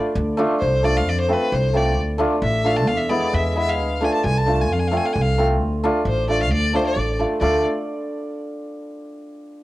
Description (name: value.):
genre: klezmer.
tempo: 132 BPM.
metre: 2/4.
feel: straight.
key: D dorian sharp4.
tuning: A4 = 441 Hz.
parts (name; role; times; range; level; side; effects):
hammered dulcimer; accompaniment; 0.0-7.6 s; G#3 to F4; -22 LUFS; equal; none.
upright bass; bass; 0.2-7.6 s; A1 to F2; -22 LUFS; equal; none.
clear violin; melody; 0.6-7.6 s; B4 to A5; -24 LUFS; left 1 dB; none.
room: light reverb, small room ambience.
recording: home recording on cassette.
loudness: -18 LUFS.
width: side -16 dB against mid.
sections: 0.2-7.4 A section.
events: none.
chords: 0.2 Dm; 1.1 F; 2.0 Dm; 2.9 E; 3.8 Dm; 4.7 F; 5.6 Dm.